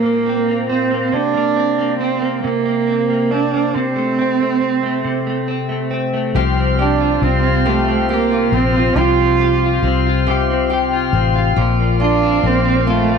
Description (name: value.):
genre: six-eight pop ballad.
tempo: 46 BPM (dotted quarters).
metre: 6/8.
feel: straight.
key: unclear.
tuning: A4 = 438 Hz.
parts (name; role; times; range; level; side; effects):
dark cello; melody; 0.0-13.2 s; A3 to F4; -17 LUFS; right 8 dB; none.
direct-recorded clean electric guitar; accompaniment; 0.0-13.2 s; Bb2 to G4; -20 LUFS; left 3 dB; double-tracked left and right.
vintage muted fingered electric bass; bass; 6.3-13.2 s; A1 to C2; -18 LUFS; left 3 dB; none.
tonewheel organ; sustained chords; 6.4-13.2 s; G4 to C6; -24 LUFS; left 2 dB; slow rotary speaker.
fingerpicked steel-string acoustic guitar; arpeggios; 6.4-13.2 s; F3 to G4; -25 LUFS; left 13 dB; none.
room: light reverb.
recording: 1960s-style stereo with parts hard left and right.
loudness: -14 LUFS.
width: side -6 dB against mid.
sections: 0.0-6.4 A section; 6.4-13.2 B section.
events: none.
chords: 0.0 Bbsus2; 1.1 Bbadd9/C; 3.7 Am/C; 6.4 Csus4; 9.0 Fsus2/C; 11.6 Bbadd9.